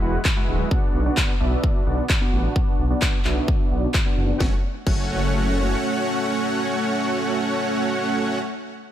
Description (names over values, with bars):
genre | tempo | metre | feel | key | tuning
EDM, festival progressive house | 130 BPM | 4/4 | straight | F# minor | A4 = 440 Hz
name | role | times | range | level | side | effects
dense compressed supersaw | riff | 0.0-8.4 s | G#3 to F#5 | -23 LUFS | right 1 dB | sidechain pumping, low-pass filter, digital delay
wide detuned saw bass | bass | 0.0-5.8 s | D1 to B1 | -23 LUFS | equal | chorus, sidechain pumping
house drum kit | drums | 0.2-5.0 s | crash cymbal, handclaps, snare drum | -27 LUFS | equal | none
electronic kick drum | drums | 0.3-5.0 s | none | -22 LUFS | equal | none
room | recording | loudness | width
light reverb | none | -19 LUFS | side -11 dB against mid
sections
0.0-4.4 A section; 4.4-8.1 B section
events
none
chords
0.0 Eadd9; 0.7 Bm; 4.4 F#m